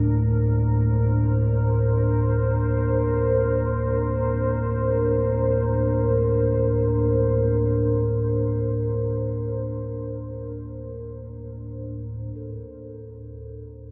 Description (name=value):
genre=dark ambient drone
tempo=free time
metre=none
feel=none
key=unclear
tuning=A4 = 440 Hz
part: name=deep dark ambient pad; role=sustained chords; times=0.0-12.4 s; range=D4 to C5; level=-27 LUFS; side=equal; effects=chorus, built-in reverb
part: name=deep rumbling drone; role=drone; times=0.0-13.9 s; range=D2 to A2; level=-26 LUFS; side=equal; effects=built-in reverb
part: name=quartz singing bowl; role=texture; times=12.4-13.9 s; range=A4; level=-46 LUFS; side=equal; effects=none
room=wet cathedral reverb, RT60 5.3 s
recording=in a vast, echoing space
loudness=-23 LUFS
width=mono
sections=0.0-12.4 A section; 12.4-13.9 B section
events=filter sweep on synth drone 12.4-13.9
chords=0.0 Bb/D; 12.4 D5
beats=free time